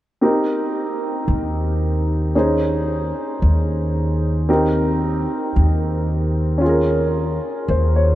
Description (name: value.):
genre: jazz.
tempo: 56 BPM.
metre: 4/4.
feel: swing 69% on 8ths.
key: unclear.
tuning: A4 = 440 Hz.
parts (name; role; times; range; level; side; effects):
clear upright piano; accompaniment; 0.2-8.2 s; C4 to Db5; -20 LUFS; equal; none.
upright bass; bass; 1.3-8.2 s; Eb2; -19 LUFS; equal; none.
room: moderate huge ambient reverb, RT60 7.7 s.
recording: in a vast, echoing space.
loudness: -17 LUFS.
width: side -14 dB against mid.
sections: 0.2-8.2 A section.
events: none.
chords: 0.2 Cm7; 2.3 Abadd11/Eb; 4.5 Cm7; 6.6 Eb7sus4.